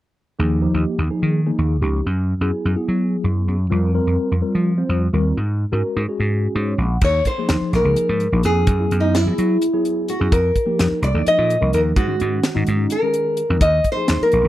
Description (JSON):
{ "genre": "electric jazz fusion", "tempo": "254 BPM (eighths)", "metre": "7/8", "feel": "straight", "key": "unclear", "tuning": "A4 = 440 Hz", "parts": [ { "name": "mellow tine electric piano", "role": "accompaniment", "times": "0.4-14.5 s", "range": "Eb3 to Gb5", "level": "-23 LUFS", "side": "left 1 dB", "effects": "medium stereo tremolo, phaser" }, { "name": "vintage slap bass", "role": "bass", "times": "0.4-14.5 s", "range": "Bb1 to Gb3", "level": "-19 LUFS", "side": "equal", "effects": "none" }, { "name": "nylon-string guitar", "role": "melody", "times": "7.0-14.5 s", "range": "Eb4 to Eb5", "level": "-19 LUFS", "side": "equal", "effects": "none" }, { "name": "crisp fusion drum kit", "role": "drums", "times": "7.0-14.4 s", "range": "crash cymbal, hi-hat, kick drum, snare drum", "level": "-21 LUFS", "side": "equal", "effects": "none" } ], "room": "studio ambience", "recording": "dry, close 1970s-style studio recording", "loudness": "-16 LUFS", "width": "side -14 dB against mid", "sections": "0.4-7.0 A section; 7.0-14.5 B section", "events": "tine electric piano fill 6.3-7.0", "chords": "0.4 Ebsus4; 2.1 Gb9sus4; 3.7 Fsus4; 5.4 Ab9sus4; 7.0 Ebsus4; 8.7 Gb9sus4; 10.3 F9sus4; 12.0 Ab9sus4; 13.6 Ebsus4" }